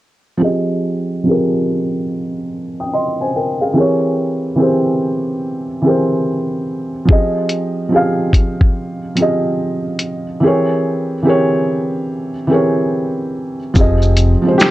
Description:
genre	lo-fi hip hop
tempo	72 BPM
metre	4/4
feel	swing 64% on 16ths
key	F minor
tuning	A4 = 442 Hz
part	felt-muted upright piano	accompaniment	0.4-14.7 s	E3 to Eb6	-15 LUFS	equal	low-pass filter
part	lo-fi sampler-style drum kit	drums	7.1-14.7 s	finger snaps, hi-hat, kick drum, shaker, snare drum	-12 LUFS	equal	none
part	deep dub fingered electric bass	bass	13.8-14.3 s	F1	-13 LUFS	equal	none
part	dark upright piano	melody	14.6-14.7 s	G4	-13 LUFS	left 1 dB	low-pass filter
room	moderate small room reverb, RT60 0.5 s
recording	cassette tape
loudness	-14 LUFS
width	side -16 dB against mid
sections	0.4-13.8 A section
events	filter sweep on felt piano 0.4-13.8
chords	0.4 Fm9; 3.8 C7b9b13/E; 7.1 Fm9; 10.4 C7b9b13/E; 13.8 Fm9

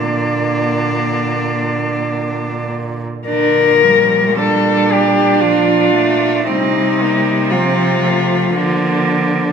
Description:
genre	classical, lyrical piece for cello ensemble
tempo	51-59 BPM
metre	3/4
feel	rubato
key	Bb major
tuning	A4 = 445 Hz
part	dark cello	melody	0.0-9.1 s	Bb3 to Bb4	-16 LUFS	left 7 dB	none
part	rich cello	second line	0.0-9.5 s	D3 to D4	-18 LUFS	right 8 dB	none
part	rich cello	accompaniment	0.0-9.5 s	D3 to D4	-20 LUFS	left 1 dB	none
part	rich cello	bass	0.0-9.5 s	Bb2 to D3	-21 LUFS	right 2 dB	none
room	wet recital hall reverb, RT60 1.8 s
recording	none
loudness	-12 LUFS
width	side -7 dB against mid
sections	0.0-3.3 A section; 3.3-9.5 B section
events	none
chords	0.0 Bb; 6.5 F5/C; 8.6 Bb/D

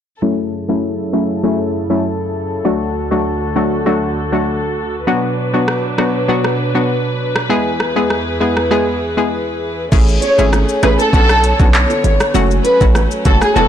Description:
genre	dancehall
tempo	99 BPM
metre	4/4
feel	straight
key	F# minor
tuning	A4 = 439 Hz
part	hollow square pluck	accompaniment	0.2-13.7 s	F#3 to G#4	-17 LUFS	left 2 dB	chorus, sidechain pumping, low-pass filter
part	dark studio string section	sustained chords	0.2-13.7 s	D2 to C#5	-20 LUFS	equal	sidechain pumping, low-pass filter
part	island pop drum kit	drums	5.7-13.7 s	crash cymbal, handclaps, hi-hat, kick drum, rim click, shaker	-17 LUFS	equal	soft clipping on snare
part	hard-hitting 808-style bass	bass	9.9-13.7 s	E1 to B1	-15 LUFS	right 1 dB	none
part	dark studio violin section	melody	10.2-13.7 s	G#4 to C#5	-14 LUFS	equal	ping-pong delay
part	bongos	percussion	10.2-13.5 s	none	-28 LUFS	right 11 dB	none
room	light reverb, digital ambience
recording	blown-out, overdriven recording, overdrive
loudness	-13 LUFS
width	side -9 dB against mid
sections	0.2-9.9 A section; 9.9-13.7 B section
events	filter sweep 0.2-9.9; break 9.3-9.9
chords	0.2 F#m7; 2.6 D; 5.1 Bm; 7.5 E; 9.9 Amaj7; 11.1 Bmadd9; 12.3 F#m

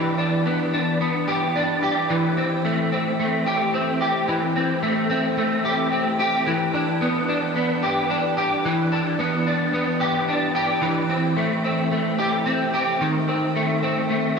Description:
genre	dream pop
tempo	110 BPM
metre	4/4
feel	straight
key	E minor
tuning	A4 = 440 Hz
part	electric guitar at the edge of break-up	solo	0.0-14.4 s	D#3 to G4	-20 LUFS	equal	ensemble chorus, tape echo
room	moderate shimmer reverb, RT60 7.7 s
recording	none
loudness	-20 LUFS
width	side -5 dB against mid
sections	0.0-14.4 A section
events	none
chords	0.0 Em7; 2.1 Am7/E; 6.5 Em7; 10.8 Am7/E; 13.0 D#dim7(no3)

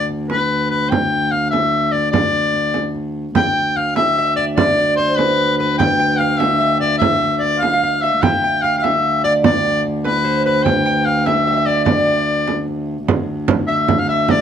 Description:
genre	medieval dance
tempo	99 BPM (dotted quarters)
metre	6/8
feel	straight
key	D dorian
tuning	A4 = 443 Hz
part	bright shawm	melody	0.0-14.4 s	B4 to G5	-17 LUFS	left 3 dB	none
part	warm viola da gamba	drone	0.0-14.4 s	D2	-21 LUFS	equal	none
part	frame drum	percussion	0.1-14.4 s	none	-19 LUFS	right 6 dB	none
part	concert harp	second line	3.4-14.4 s	B4 to G5	-21 LUFS	right 3 dB	none
room	moderate studio reverb, RT60 0.7 s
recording	none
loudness	-14 LUFS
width	side -8 dB against mid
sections	0.0-3.4 A section; 3.4-13.1 A section; 13.1-14.4 B section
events	none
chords	none

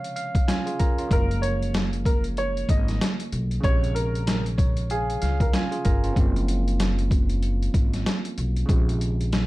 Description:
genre	hip hop, boom-bap hip-hop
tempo	95 BPM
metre	4/4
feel	swing 59% on 16ths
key	Bb minor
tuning	A4 = 440 Hz
part	bell-like tine electric piano	accompaniment	0.0-9.5 s	C3 to Bb5	-30 LUFS	right 2 dB	cassette tape, high-pass filter, low-pass filter, plate reverb
part	trip hop sampler-style drum kit	drums	0.0-9.5 s	hi-hat, kick drum, snare drum	-23 LUFS	equal	none
part	warm upright piano	melody	1.1-5.5 s	Ab4 to Eb5	-30 LUFS	equal	high-pass filter, low-pass filter, plate reverb, tape echo
part	upright bass	bass	1.1-9.5 s	Gb1 to Db2	-25 LUFS	equal	none
room	light reverb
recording	dark, warm production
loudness	-21 LUFS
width	side -18 dB against mid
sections	0.0-9.5 A section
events	break 0.0-1.1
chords	0.0 Bbm9/C; 1.1 Gbmaj9; 3.6 Bbm7; 6.2 Gbmaj9#11; 8.7 Bbm7

